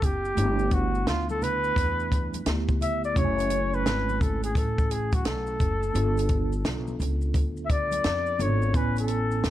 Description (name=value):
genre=hip hop, jazz-hop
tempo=86 BPM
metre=4/4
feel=swing 64% on 16ths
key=unclear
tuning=A4 = 440 Hz
part: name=mellow flugelhorn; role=melody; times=0.0-9.5 s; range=E#4 to E5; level=-28 LUFS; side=left 1 dB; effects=none
part: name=mellow tine electric piano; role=accompaniment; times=0.0-9.5 s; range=A3 to G#5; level=-32 LUFS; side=right 2 dB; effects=medium stereo tremolo
part: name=upright bass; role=bass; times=0.0-9.5 s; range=F#1 to F2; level=-29 LUFS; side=equal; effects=none
part: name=compact cocktail drum kit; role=drums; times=0.0-9.5 s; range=hi-hat, kick drum, snare drum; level=-27 LUFS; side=equal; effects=none
part: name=congas and maracas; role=percussion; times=0.0-9.5 s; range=none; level=-40 LUFS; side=left 2 dB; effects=none
room=small room reverb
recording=dark, warm production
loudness=-23 LUFS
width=side -13 dB against mid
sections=0.0-9.5 A section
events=flugelhorn solo 0.0-9.5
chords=0.4 G69; 3.2 F#m7; 6.0 G9; 8.7 Amaj9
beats=| 0.37 1.07 1.76 2.46 | 3.16 3.86 4.55 5.25 | 5.95 6.65 7.35 8.04 | 8.74 9.44